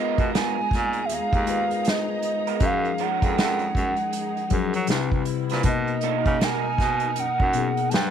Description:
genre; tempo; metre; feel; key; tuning
R&B, neo-soul; 79 BPM; 4/4; swing 63% on 16ths; unclear; A4 = 444 Hz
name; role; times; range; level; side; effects
hollow clarinet-like synth lead; melody; 0.0-8.1 s; D#5 to A5; -26 LUFS; right 4 dB; chorus
electric guitar through a small old amp; second line; 0.0-6.7 s; G3 to B4; -30 LUFS; right 15 dB; analog chorus
mellow tine electric piano; accompaniment; 0.0-8.1 s; B2 to B4; -28 LUFS; left 11 dB; auto-pan
clear studio string section; sustained chords; 0.0-8.1 s; C3 to A#5; -34 LUFS; left 1 dB; none
breathy baritone saxophone; bass; 0.2-8.1 s; C2 to F#3; -28 LUFS; equal; none
unplugged drum kit; drums; 0.2-8.1 s; hi-hat, kick drum, snare drum; -25 LUFS; right 1 dB; none
room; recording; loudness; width
small room ambience; 1960s-style stereo with parts hard left and right; -21 LUFS; side -8 dB against mid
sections
0.0-8.1 A section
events
none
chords
0.0 G#m69; 2.6 F#maj9; 4.9 Cmaj7; 5.6 Bmaj7

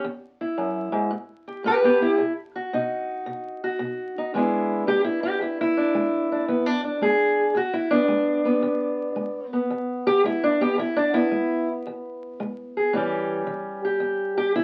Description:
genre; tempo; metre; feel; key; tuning
acoustic country blues, solo or duo; 112 BPM; 4/4; swing 68% on 8ths; E mixolydian; A4 = 440 Hz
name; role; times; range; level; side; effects
fingerpicked steel-string acoustic guitar; solo; 0.0-14.6 s; E2 to B4; -24 LUFS; equal; none
room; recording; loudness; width
moderate studio reverb, RT60 0.6 s; very old 78 rpm record, vinyl crackle; -24 LUFS; mono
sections
0.0-4.3 A section; 4.3-14.6 B section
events
steel-string acoustic guitar solo 4.3-14.6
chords
0.1 E; 1.1 Emadd11/A; 2.2 B; 4.3 E7; 12.9 A7

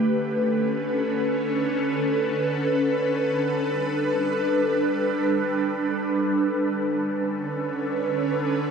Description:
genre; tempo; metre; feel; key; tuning
hip hop; free time; none; none; B minor; A4 = 443 Hz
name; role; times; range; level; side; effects
ethereal airy pad; solo; 0.0-8.7 s; D3 to B4; -22 LUFS; equal; ensemble chorus, built-in reverb, phaser, ping-pong delay
room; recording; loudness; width
moderate huge ambient reverb, RT60 5.2 s; none; -22 LUFS; side -6 dB against mid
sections
0.0-8.7 A section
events
none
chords
0.0 Bm9; 3.2 A9sus4; 6.5 Bm9

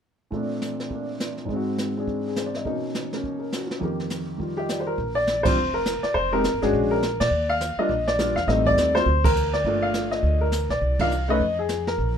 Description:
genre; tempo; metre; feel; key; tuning
jazz piano trio; 206 BPM; 4/4; swing 62% on 8ths; Bb major; A4 = 440 Hz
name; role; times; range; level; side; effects
warm baby grand piano; melody; 0.3-12.2 s; F2 to F5; -23 LUFS; left 1 dB; none
jazz brush drum kit; drums; 0.3-12.2 s; brushed snare drum, hi-hat, kick drum, ride cymbal, snare drum; -29 LUFS; right 2 dB; none
upright bass; bass; 5.0-12.2 s; F1 to Bb2; -26 LUFS; right 1 dB; none
room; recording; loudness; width
light reverb; minimal, uncompressed stereo recording; -21 LUFS; side -8 dB against mid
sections
0.3-5.0 A section; 5.0-12.2 B section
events
band accent 5.4, 7.2, 9.2, 11.0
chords
0.3 Bbmaj9; 1.5 Ab7; 2.7 Bmaj9; 3.8 F9sus4; 5.0 Bb; 6.1 Fmadd9; 6.7 Bb7alt; 7.3 Ebmaj9; 8.5 Am7b5; 9.1 Bbadd9/D; 9.6 Gm9; 10.8 Cmadd9; 11.4 Fm

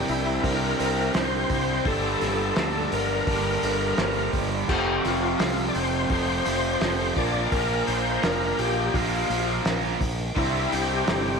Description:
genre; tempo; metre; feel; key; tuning
classic rock; 85 BPM; 4/4; straight; G dorian; A4 = 442 Hz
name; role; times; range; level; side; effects
overdriven tonewheel organ; melody; 0.0-11.4 s; E4 to D5; -28 LUFS; left 2 dB; slow rotary speaker, chorus vibrato, slapback echo
reed electric piano; accompaniment; 0.0-11.4 s; Bb3 to A5; -34 LUFS; right 8 dB; overdrive, fast tremolo, slapback echo
cranked stack guitar; riff; 0.0-11.4 s; F2 to C4; -31 LUFS; left 1 dB; overdrive
distorted electric guitar; riff; 0.0-11.4 s; F2 to C4; -30 LUFS; right 11 dB; distortion
overdriven electric guitar; riff; 0.0-11.4 s; F2 to E4; -32 LUFS; left 10 dB; none
growling fingered electric bass; bass; 0.0-11.4 s; F1 to D2; -30 LUFS; equal; overdrive
cloth-damped thuddy drum kit; drums; 0.1-11.2 s; crash cymbal, hi-hat, kick drum, snare drum; -29 LUFS; equal; none
room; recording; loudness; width
moderate lush hall reverb, RT60 2.9 s; big arena sound; -22 LUFS; side -5 dB against mid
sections
0.0-11.4 A section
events
none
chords
0.0 Cadd9; 1.9 Gmadd9; 4.7 F; 7.2 Bb; 10.4 Cadd9

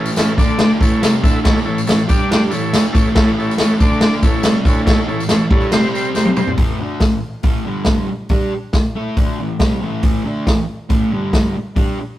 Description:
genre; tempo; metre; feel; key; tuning
garage rock duo or trio; 140 BPM; 4/4; straight; unclear; A4 = 440 Hz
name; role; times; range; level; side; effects
combo organ; sustained chords; 0.0-6.5 s; C4 to E5; -22 LUFS; equal; none
fuzz guitar; riff; 0.0-12.0 s; G2 to A4; -20 LUFS; equal; distortion
tambourine; percussion; 0.1-6.5 s; none; -32 LUFS; left 3 dB; none
vintage drum kit; drums; 0.2-11.9 s; crash cymbal, hi-hat, kick drum, snare drum, toms; -15 LUFS; equal; none
room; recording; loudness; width
light reverb; rough rehearsal-room recording, tube saturation; -13 LUFS; side -14 dB against mid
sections
0.0-6.6 A section; 6.6-12.2 B section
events
drum fill 6.1-6.6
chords
0.4 D5; 0.8 A; 2.1 G5; 2.5 A; 3.8 D5; 4.2 A; 5.7 C5; 6.6 A5; 7.7 G5; 8.1 A5; 11.1 G5; 11.5 N.C.

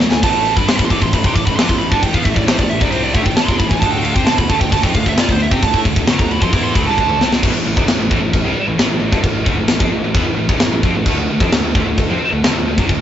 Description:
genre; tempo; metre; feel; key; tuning
heavy metal; 133 BPM; 4/4; straight; A minor; A4 = 439 Hz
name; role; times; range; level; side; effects
heavy high-gain guitar; riff; 0.0-13.0 s; G2 to C5; -19 LUFS; equal; distortion
fuzz picked electric bass; bass; 0.0-13.0 s; G1 to C3; -23 LUFS; equal; overdrive
tight metal drum kit; drums; 0.0-13.0 s; china cymbal, crash cymbal, kick drum, snare drum, toms; -15 LUFS; equal; none
high-gain lead guitar; melody; 0.1-7.3 s; C5 to D6; -20 LUFS; right 4 dB; distortion
room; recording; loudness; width
light reverb; rough rehearsal-room recording, warm saturation, nothing above 7.7 kHz; -13 LUFS; side -10 dB against mid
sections
0.0-7.4 A section; 7.4-13.0 B section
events
drum fill 0.0, 7.0-7.4; lead electric guitar solo 0.0-7.4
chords
0.2 Am; 3.8 D5; 7.4 Am; 11.1 D5

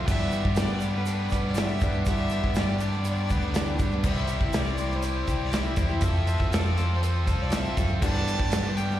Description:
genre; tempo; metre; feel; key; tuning
folk rock and heartland rock; 121 BPM; 4/4; straight; G mixolydian; A4 = 440 Hz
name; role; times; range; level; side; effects
picked steel-string acoustic guitar; accompaniment; 0.0-9.0 s; G2 to A4; -34 LUFS; left 3 dB; slapback echo
biting overdriven guitar; riff; 0.0-9.0 s; G2 to A4; -32 LUFS; equal; slapback echo
fingered electric bass; bass; 0.0-9.0 s; C2 to G2; -27 LUFS; equal; none
rich fiddle; melody; 0.1-9.0 s; B4 to A5; -34 LUFS; right 1 dB; none
natural country drum kit; drums; 0.1-9.0 s; crash cymbal, hi-hat, kick drum, snare drum; -28 LUFS; equal; none
egg shaker; percussion; 0.1-8.9 s; none; -51 LUFS; right 3 dB; none
room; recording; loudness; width
small room ambience; live gig heard through the venue's PA, recital hall reverb; -23 LUFS; side -12 dB against mid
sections
0.0-9.0 A section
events
none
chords
0.1 G6; 4.1 C; 6.0 F; 8.0 G6

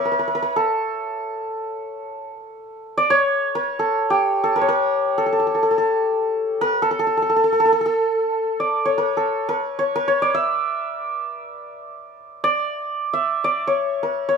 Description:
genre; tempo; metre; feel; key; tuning
Persian modal ensemble; free time; none; none; A dastgah homayun; A4 = 441 Hz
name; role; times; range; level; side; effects
santur; solo; 0.0-14.4 s; G4 to E5; -19 LUFS; equal; none
room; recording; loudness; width
moderate studio ambience, RT60 0.5 s; band playing live in one room; -18 LUFS; side -6 dB against mid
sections
0.0-8.2 A section; 8.2-14.4 A section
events
none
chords
none

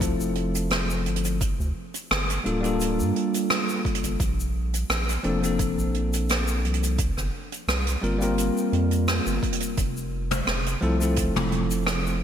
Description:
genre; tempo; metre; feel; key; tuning
sunset chillout; 86 BPM; 4/4; swing 53% on 16ths; F major; A4 = 440 Hz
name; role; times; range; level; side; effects
bell-like tine electric piano; accompaniment; 0.0-12.2 s; F3 to Bb4; -27 LUFS; moving between left 4 dB and right 3 dB; auto-pan, digital delay
round analog bass; bass; 0.0-12.2 s; D1 to G2; -27 LUFS; equal; none
electronic kick drum; drums; 0.0-11.3 s; none; -29 LUFS; equal; overdrive
jazz brush drum kit; drums; 0.0-12.2 s; hi-hat, rim click, shaker, toms; -28 LUFS; equal; gated reverb
room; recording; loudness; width
moderate lush hall reverb, RT60 3.1 s; bright 1980s-style digital production; -22 LUFS; side -9 dB against mid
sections
0.0-12.2 A section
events
none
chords
0.0 Fmaj7; 1.4 Gm9; 4.2 Bbmaj9; 7.0 C7sus4; 9.8 Fmaj7

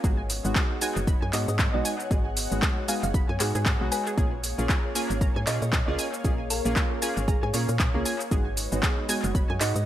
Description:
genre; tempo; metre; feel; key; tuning
deep house; 116 BPM; 4/4; swing 57% on 16ths; unclear; A4 = 440 Hz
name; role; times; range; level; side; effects
warm analog pad; sustained chords; 0.0-9.9 s; Ab3 to Gb5; -39 LUFS; equal; chorus, sidechain pumping
analog pluck; arpeggios; 0.0-9.6 s; Ab4 to Cb6; -36 LUFS; right 3 dB; chorus, sidechain pumping, tape echo
warm analog keys; stabs; 0.0-9.8 s; Ab3 to Ab4; -32 LUFS; equal; chorus, sidechain pumping, tape echo
woody FM bass; bass; 0.0-9.9 s; Gb1 to Bb2; -29 LUFS; equal; sidechain pumping
electronic kick drum; drums; 0.0-9.5 s; none; -26 LUFS; equal; none
house drum kit; drums; 0.0-9.8 s; handclaps, hi-hat, shaker; -30 LUFS; equal; overdrive, tape echo
ethereal airy pad; texture; 0.0-9.9 s; Db5 to Gb5; -38 LUFS; left 1 dB; ensemble chorus, built-in reverb, sidechain pumping
thumb-piano-like synth pluck; melody; 1.3-9.8 s; Ab4 to Ab5; -34 LUFS; right 1 dB; chorus, phaser, tape echo
room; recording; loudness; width
light reverb, digital ambience; echo-heavy mix; -23 LUFS; side -12 dB against mid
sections
0.0-9.9 A section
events
none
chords
0.0 Abm7; 4.2 Bbm7; 8.3 Abm7

